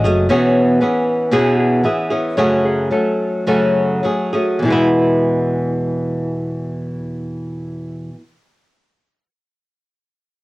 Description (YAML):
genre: pop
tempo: 100-118 BPM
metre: 4/4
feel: swing 55% on 16ths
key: E major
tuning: A4 = 437 Hz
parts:
  - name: clean lap steel guitar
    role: melody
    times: 0.0-8.0 s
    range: E4 to E5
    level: -21 LUFS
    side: left 1 dB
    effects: cassette tape
  - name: flamenco guitar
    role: accompaniment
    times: 0.0-8.2 s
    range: E2 to G#4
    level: -16 LUFS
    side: equal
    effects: cassette tape
room: moderate studio reverb, RT60 0.6 s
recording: home recording on cassette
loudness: -14 LUFS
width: side -19 dB against mid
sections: 0.0-4.6 A section; 4.6-9.4 B section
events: slowing down 0.3-4.6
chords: 0.3 C#m7/E; 2.4 F#madd9; 4.6 E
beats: | 0.30 0.81 1.32 1.85 | 2.38 2.92 3.48 4.05 | 4.64 5.24 5.83 6.43 | 7.03 7.63